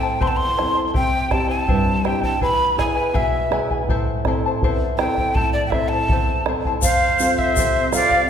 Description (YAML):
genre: andean folk, Andean ensemble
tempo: 82 BPM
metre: 2/4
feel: straight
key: A minor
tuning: A4 = 438 Hz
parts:
  - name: breathy hollow quena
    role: melody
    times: 0.0-8.3 s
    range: D5 to C6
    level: -21 LUFS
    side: equal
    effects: none
  - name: charango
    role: accompaniment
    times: 0.0-8.3 s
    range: E4 to A5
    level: -26 LUFS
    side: left 4 dB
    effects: none
  - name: nylon-string guitar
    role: accompaniment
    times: 0.0-8.3 s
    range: E2 to A4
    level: -24 LUFS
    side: right 1 dB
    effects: none
  - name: bombo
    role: percussion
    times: 0.2-8.3 s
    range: none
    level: -22 LUFS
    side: equal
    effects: none
  - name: bright quena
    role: second line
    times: 6.8-8.3 s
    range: C5 to D5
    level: -22 LUFS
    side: right 4 dB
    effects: none
  - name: egg shaker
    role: percussion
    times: 6.8-8.1 s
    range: none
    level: -27 LUFS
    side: left 5 dB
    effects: none
room: wet recital hall reverb, RT60 1.6 s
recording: recorded in a church or concert hall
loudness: -17 LUFS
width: side -8 dB against mid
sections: 0.0-6.8 A section; 6.8-8.3 B section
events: none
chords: 0.0 Am; 0.9 C; 2.4 E; 3.9 Am; 6.8 F